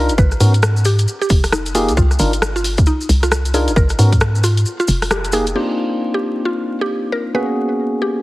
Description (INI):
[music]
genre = UK garage, two-step garage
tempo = 134 BPM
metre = 4/4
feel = swing 61% on 16ths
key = C minor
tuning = A4 = 442 Hz
[part]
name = mallet-like synth pluck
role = melody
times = 0.0-8.2 s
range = Eb4 to Cb5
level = -23 LUFS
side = equal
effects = chorus, tape echo
[part]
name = tine electric piano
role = stabs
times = 0.0-8.2 s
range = Bb3 to Bb4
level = -20 LUFS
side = equal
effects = none
[part]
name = hollow knocking FM bass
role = bass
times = 0.0-5.5 s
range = F1 to Ab2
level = -16 LUFS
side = equal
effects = none
[part]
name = garage drum kit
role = drums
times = 0.1-5.7 s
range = crash cymbal, hi-hat, rim click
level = -22 LUFS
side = equal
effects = low-pass filter on snare, low-pass filter on hats, low-pass filter on cymbals
[part]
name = maracas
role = percussion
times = 0.1-5.5 s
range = none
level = -28 LUFS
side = left 2 dB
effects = none
[part]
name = electronic kick drum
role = drums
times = 0.2-4.2 s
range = none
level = -14 LUFS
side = equal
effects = none
[sound]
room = light reverb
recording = heavily compressed radio sound, vinyl crackle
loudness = -14 LUFS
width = side -18 dB against mid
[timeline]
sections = 0.0-5.6 A section; 5.6-8.2 B section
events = break 4.7-5.6; band accent 5.1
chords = 0.2 Abm11; 1.1 Fm11; 2.0 Cm11; 3.8 Abm11; 4.7 Fm11; 5.6 Cm11; 7.3 Abm11